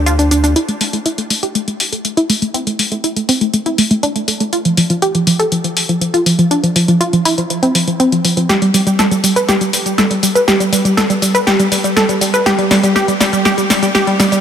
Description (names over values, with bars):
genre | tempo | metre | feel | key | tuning
progressive house | 121 BPM | 4/4 | straight | unclear | A4 = 440 Hz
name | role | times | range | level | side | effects
wide unison pluck | arpeggios | 0.0-14.4 s | F3 to B4 | -13 LUFS | equal | tape echo
saturated sub bass | bass | 0.0-0.5 s | D2 | -14 LUFS | equal | none
deep house drum kit | drums | 0.1-14.4 s | hi-hat, shaker, snare drum | -16 LUFS | left 1 dB | overdrive
room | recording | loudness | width
moderate huge ambient reverb, RT60 4.9 s | none | -12 LUFS | side -8 dB against mid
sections
0.6-14.4 A section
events
build-up 0.6-14.4; filter sweep on synth pluck 0.6-14.4; drum fill 8.5-14.4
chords
0.0 Dm; 0.6 N.C.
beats
0.06 | 0.56 1.06 1.55 2.05 | 2.54 3.04 3.54 4.03 | 4.53 5.02 5.52 6.01 | 6.51 7.01 7.50 8.00 | 8.49 8.99 9.49 9.98 | 10.48 10.97 11.47 11.96 | 12.46 12.96 13.45 13.95